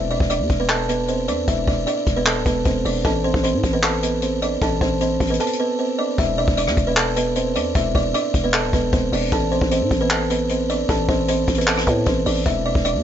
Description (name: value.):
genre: hip hop, trap.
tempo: 153 BPM.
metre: 4/4.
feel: half-time.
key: unclear.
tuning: A4 = 439 Hz.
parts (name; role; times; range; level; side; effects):
buzzing kalimba; melody; 0.0-13.0 s; B3 to A5; -20 LUFS; right 1 dB; tape echo.
growling 808-style bass; bass; 0.0-13.0 s; D1 to A2; -24 LUFS; equal; none.
jazz brush drum kit; drums; 0.2-12.9 s; handclaps, hi-hat, kick drum, rim click; -22 LUFS; left 1 dB; none.
room: small room ambience.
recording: nothing above 7.6 kHz.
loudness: -18 LUFS.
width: side -10 dB against mid.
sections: 0.0-6.2 A section; 6.2-13.0 B section.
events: none.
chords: 0.0 E5; 3.0 Am; 6.2 E5; 9.3 Am; 12.5 E5.